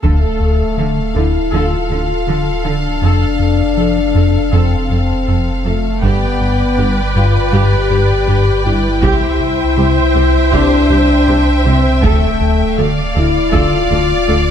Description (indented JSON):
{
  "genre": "cinematic, hybrid orchestral and electronic film score",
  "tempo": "80 BPM",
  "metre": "4/4",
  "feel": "straight",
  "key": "unclear",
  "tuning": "A4 = 440 Hz",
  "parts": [
    { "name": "clear symphonic violin section", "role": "second line", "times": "0.0-14.5 s", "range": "A4 to G5", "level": "-21 LUFS", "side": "left 2 dB", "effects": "none" },
    { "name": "warm symphonic viola section", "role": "accompaniment", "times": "0.0-14.4 s", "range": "G4 to C5", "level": "-21 LUFS", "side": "right 4 dB", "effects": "none" },
    { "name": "warm French horn section", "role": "sustained chords", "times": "0.0-14.5 s", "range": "A3 to G4", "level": "-16 LUFS", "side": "left 4 dB", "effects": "none" },
    { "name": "smooth synth bass", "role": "riff", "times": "0.0-14.5 s", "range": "C2 to G3", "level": "-17 LUFS", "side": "left 1 dB", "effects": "none" },
    { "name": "punchy sub bass", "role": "bass", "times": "0.0-14.5 s", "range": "D1 to C2", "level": "-19 LUFS", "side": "right 1 dB", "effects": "none" },
    { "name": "rich symphonic cello section", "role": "bass", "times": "0.0-14.4 s", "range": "C2 to D3", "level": "-21 LUFS", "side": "right 4 dB", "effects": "none" },
    { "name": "taiko ensemble", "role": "drums", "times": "0.0-1.5, 6.0-14.2 s", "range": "none", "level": "-22 LUFS", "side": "right 1 dB", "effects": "none" }
  ],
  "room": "moderate concert hall reverb, RT60 2.0 s",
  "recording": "none",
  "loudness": "-11 LUFS",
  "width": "side -9 dB against mid",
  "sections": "0.0-14.5 A section",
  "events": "none",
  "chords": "0.0 Dm; 3.0 F; 6.0 G; 9.0 C; 12.0 Dm",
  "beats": "| 0.03 0.78 1.53 2.28 | 3.03 3.78 4.53 5.28 | 6.03 6.78 7.53 8.28 | 9.03 9.78 10.53 11.28 | 12.03 12.78 13.53 14.28"
}